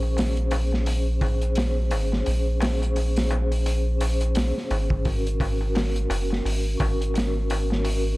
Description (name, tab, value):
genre	trip hop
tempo	86 BPM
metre	4/4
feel	swing 58% on 16ths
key	Bb minor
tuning	A4 = 440 Hz
part	vibraphone with soft mallets	accompaniment	0.0-8.2 s	Db4 to C5	-29 LUFS	equal	tremolo, low-pass filter, tape echo
part	soft dub sub bass	bass	0.0-8.2 s	Gb1 to Bb1	-24 LUFS	equal	none
part	darbuka	percussion	0.0-8.0 s	none	-35 LUFS	left 1 dB	none
part	crunchy breakbeat drum kit	drums	0.2-8.0 s	hi-hat, kick drum, snare drum	-28 LUFS	equal	none
room	small room ambience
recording	dark, warm production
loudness	-22 LUFS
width	side -19 dB against mid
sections	0.0-8.2 A section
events	filter sweep on vibraphone 0.0-8.2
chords	0.0 Bbm9; 5.1 Ab9sus4